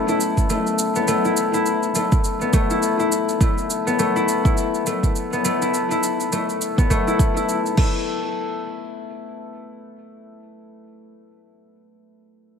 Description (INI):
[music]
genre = organic downtempo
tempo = 103 BPM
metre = 4/4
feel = swing 59% on 16ths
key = A major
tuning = A4 = 441 Hz
[part]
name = concert harp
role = arpeggios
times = 0.0-11.1 s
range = A3 to E4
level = -20 LUFS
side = left 2 dB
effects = tape echo
[part]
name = electronic shaker and crash cymbal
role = drums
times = 0.1-7.9 s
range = none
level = -29 LUFS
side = right 2 dB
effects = none
[part]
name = electronic kick drum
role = drums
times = 0.4-7.9 s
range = none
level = -19 LUFS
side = right 1 dB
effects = none
[sound]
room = moderate spring reverb, RT60 2.1 s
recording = echo-heavy mix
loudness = -18 LUFS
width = side -7 dB against mid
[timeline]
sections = 0.0-8.1 A section; 8.1-10.4 B section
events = none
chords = 0.0 Asus2; 7.8 N.C.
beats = 0.49 | 1.08 1.66 2.24 2.82 | 3.41 3.99 4.57 5.15 | 5.74 6.32 6.90 7.48 | 8.07 8.65 9.23 9.81